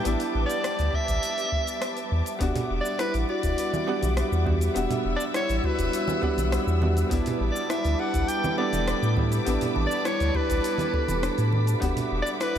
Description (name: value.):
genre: sunset chillout.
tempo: 102 BPM.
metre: 4/4.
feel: straight.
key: unclear.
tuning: A4 = 441 Hz.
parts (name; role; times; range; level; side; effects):
bright soprano saxophone; melody; 0.0-12.6 s; B4 to G5; -30 LUFS; right 1 dB; analog delay.
clear grand piano; accompaniment; 0.0-12.6 s; G3 to F#5; -31 LUFS; right 1 dB; auto-pan, analog delay.
muted studio string section; sustained chords; 0.0-12.6 s; G3 to E6; -32 LUFS; equal; none.
warm sub bass; bass; 0.1-12.6 s; E1 to A2; -26 LUFS; equal; none.
deep house drum kit; drums; 0.1-12.6 s; hi-hat, rim click, shaker; -37 LUFS; equal; overdrive, small room ambience.
electronic kick drum; drums; 0.9-11.9 s; none; -29 LUFS; equal; overdrive, small room ambience.
kalimba; arpeggios; 2.4-12.6 s; D4 to A4; -31 LUFS; left 2 dB; analog delay.
wind-like tuned noise texture; texture; 2.9-12.6 s; B5; -41 LUFS; right 7 dB; built-in reverb.
congas; percussion; 2.6-12.1 s; none; -35 LUFS; right 3 dB; none.
room: moderate cathedral reverb, RT60 6.5 s.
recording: dreamy mix soaked in reverb.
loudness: -23 LUFS.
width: side -9 dB against mid.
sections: 0.0-12.6 A section.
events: none.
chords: 0.0 A9sus4; 2.4 Em9; 7.1 A9sus4; 11.8 Em9.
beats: | 0.05 0.64 1.23 1.82 | 2.41 3.00 3.58 4.17 | 4.76 5.35 5.94 6.53 | 7.11 7.70 8.29 8.88 | 9.47 10.05 10.64 11.23 | 11.82 12.41.